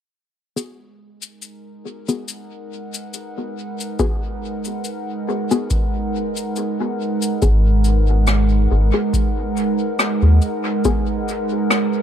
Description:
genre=ambient dub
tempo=70 BPM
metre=4/4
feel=swing 54% on 16ths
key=G# minor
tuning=A4 = 440 Hz
part: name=warbly tape-like pad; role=sustained chords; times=1.6-12.0 s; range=G#3 to F#5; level=-22 LUFS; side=right 2 dB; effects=chorus, built-in reverb
part: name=filtered dub chord stab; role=stabs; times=0.6-11.0 s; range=B3 to G#4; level=-23 LUFS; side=left 4 dB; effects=chorus, dub echo
part: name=cabasa and rim click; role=drums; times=0.6-11.9 s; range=none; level=-25 LUFS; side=left 2 dB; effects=dub echo
part: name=electronic kick drum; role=drums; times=4.0-11.0 s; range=none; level=-21 LUFS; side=equal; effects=none
part: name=soft dub sub bass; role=bass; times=7.4-10.4 s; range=G#1 to D#2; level=-14 LUFS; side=equal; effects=none
room=little or no reverb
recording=echo-heavy mix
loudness=-17 LUFS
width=side -9 dB against mid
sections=0.6-7.4 A section; 7.4-12.0 B section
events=fade-in on ambient pad 0.6-7.4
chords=0.6 G#m7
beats=| 0.56 1.42 2.28 3.14 | 3.99 4.85 5.71 6.57 | 7.42 8.28 9.14 9.99 | 10.85 11.71

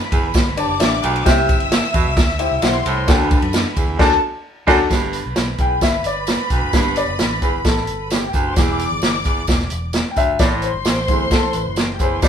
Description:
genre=uptempo 1960s-style soul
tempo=131 BPM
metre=4/4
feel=straight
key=G major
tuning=A4 = 441 Hz
part: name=rich studio string section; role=second line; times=0.0-12.3 s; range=G4 to E6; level=-24 LUFS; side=left 1 dB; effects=none
part: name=warm baby grand piano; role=accompaniment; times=0.0-12.3 s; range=C3 to A5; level=-21 LUFS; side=left 4 dB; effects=none
part: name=clear baritone saxophone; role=riff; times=0.1-12.3 s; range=D2 to C3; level=-22 LUFS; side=right 4 dB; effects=none
part: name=vintage muted fingered electric bass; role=bass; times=0.1-12.3 s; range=E1 to F#2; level=-26 LUFS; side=equal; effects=none
part: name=vintage drum kit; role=drums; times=0.1-12.3 s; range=crash cymbal, hi-hat, kick drum, ride cymbal, snare drum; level=-18 LUFS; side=equal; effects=none
part: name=tambourine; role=percussion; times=0.1-12.3 s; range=none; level=-35 LUFS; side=right 5 dB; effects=none
room=moderate studio reverb, RT60 0.6 s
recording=band playing live in one room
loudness=-15 LUFS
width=side -8 dB against mid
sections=0.0-4.9 A section; 4.9-12.3 B section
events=band accent 4.0-4.9; grand piano solo 4.9-12.3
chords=0.0 G; 1.3 C; 3.1 D; 4.9 G; 8.6 Em; 10.4 Am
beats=0.35 0.80 | 1.26 1.71 2.17 2.62 | 3.08 3.53 3.99 4.45 | 4.90 5.36 5.82 6.27 | 6.73 7.19 7.65 8.11 | 8.56 9.02 9.48 9.94 | 10.40 10.86 11.31 11.77 | 12.23

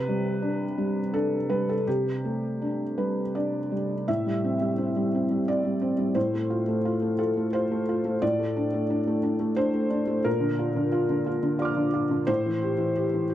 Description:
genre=neoclassical minimalist piano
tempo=87 BPM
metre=3/4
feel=rubato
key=unclear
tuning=A4 = 441 Hz
part: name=felt-muted upright piano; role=solo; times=0.0-13.3 s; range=A2 to F6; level=-24 LUFS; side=equal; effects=tape echo
room=light reverb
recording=dry, close 1970s-style studio recording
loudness=-24 LUFS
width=side -12 dB against mid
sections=0.0-4.1 A section; 4.1-13.3 B section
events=none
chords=0.0 Gadd9/C; 4.1 Am7; 6.2 F/A; 8.2 D5/A; 10.3 Bb; 12.3 Am7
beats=0.42 1.13 | 1.86 2.60 3.35 | 4.08 4.78 5.47 | 6.16 6.84 7.53 | 8.21 8.89 9.57 | 10.26 10.94 11.61 | 12.29 12.96

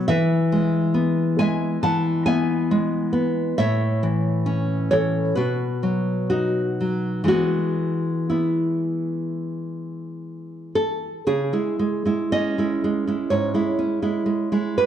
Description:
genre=romantic piece for solo classical guitar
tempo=55-70 BPM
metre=4/4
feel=rubato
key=E major, C# minor from 11.3 s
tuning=A4 = 440 Hz
part: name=nylon-string guitar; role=solo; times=0.0-14.9 s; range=G#2 to A5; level=-20 LUFS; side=equal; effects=none
room=wet recital hall reverb, RT60 1.4 s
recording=dark, warm production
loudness=-20 LUFS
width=side -10 dB against mid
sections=0.0-11.3 A section; 11.3-14.9 B section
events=none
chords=0.1 E; 3.6 A; 5.4 B; 7.3 E; 11.3 C#m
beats=| 0.08 0.95 1.81 2.69 | 3.56 4.45 5.36 6.30 | 7.29 8.29 9.28 10.26 | 11.26 12.32 13.31 14.29

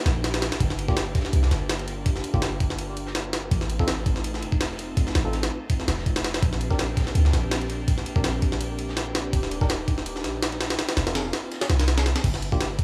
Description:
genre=drum and bass, jungle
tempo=165 BPM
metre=4/4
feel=swing 54% on 16ths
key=G minor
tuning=A4 = 435 Hz
part: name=airy breathy pad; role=sustained chords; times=0.0-12.2 s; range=A3 to G4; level=-36 LUFS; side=equal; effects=chorus
part: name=warm 808-style bass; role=bass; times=0.1-12.8 s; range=Eb1 to D2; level=-29 LUFS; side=equal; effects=none
part: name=jungle sampler-style drum kit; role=drums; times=0.1-12.8 s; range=crash cymbal, kick drum, ride cymbal, snare drum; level=-28 LUFS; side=equal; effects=none
part: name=shaker and snare drum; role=drums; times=0.6-12.2 s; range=none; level=-44 LUFS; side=equal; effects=none
part: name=tine electric piano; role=stabs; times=0.9-12.7 s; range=Bb3 to Bb4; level=-36 LUFS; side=equal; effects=dub echo
room=digital ambience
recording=small room ambience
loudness=-25 LUFS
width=mono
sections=0.0-12.2 A section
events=drop 0.0-12.2; kick drops out 11.5-12.2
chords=0.0 Ebmaj7; 0.6 Gm7; 3.5 F7; 6.4 Bb69; 9.3 Ebmaj7; 10.8 F7sus4; 12.2 Gm7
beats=0.24 | 0.61 0.97 1.33 1.70 | 2.06 2.42 2.79 3.15 | 3.52 3.88 4.24 4.61 | 4.97 5.33 5.70 6.06 | 6.42 6.79 7.15 7.51 | 7.88 8.24 8.61 8.97 | 9.33 9.70 10.06 10.42 | 10.79 11.15 11.52 11.88 | 12.24 12.61

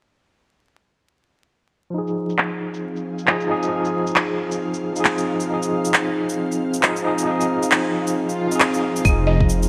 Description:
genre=future garage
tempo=135 BPM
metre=4/4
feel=swing 60% on 16ths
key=F minor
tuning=A4 = 441 Hz
part: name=overdriven tine electric piano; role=accompaniment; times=1.9-9.7 s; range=F3 to Ab4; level=-25 LUFS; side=equal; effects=fast tremolo, sidechain pumping, low-pass filter, digital delay
part: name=ethereal airy pad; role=sustained chords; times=2.9-9.7 s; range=F3 to F5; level=-29 LUFS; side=equal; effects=ensemble chorus, built-in reverb, vintage 12-bit sampler grit, sidechain pumping
part: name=electronic shaker, handclaps and claves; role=drums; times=2.1-9.7 s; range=none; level=-24 LUFS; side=equal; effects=low-pass filter on perc, low-pass filter on snare
part: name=swell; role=sound effects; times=8.3-9.1 s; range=none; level=-31 LUFS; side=equal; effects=none
part: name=electronic kick drum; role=drums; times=9.0-9.5 s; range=none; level=-20 LUFS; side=equal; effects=none
part: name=dark detuned saw bass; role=bass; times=9.1-9.7 s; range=F1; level=-20 LUFS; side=equal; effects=sidechain pumping
part: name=buzzing marimba with medium hard mallets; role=melody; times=9.3-9.5 s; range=Eb5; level=-28 LUFS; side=equal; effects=none
room=wet plate reverb, RT60 2.4 s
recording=bright 1980s-style digital production, vinyl crackle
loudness=-21 LUFS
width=mono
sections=1.9-9.1 A section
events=swell 8.3-9.1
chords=1.9 Fm7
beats=| 1.94 2.38 2.83 3.27 | 3.72 4.16 4.61 5.05 | 5.50 5.94 6.38 6.83 | 7.27 7.72 8.16 8.61 | 9.05 9.50

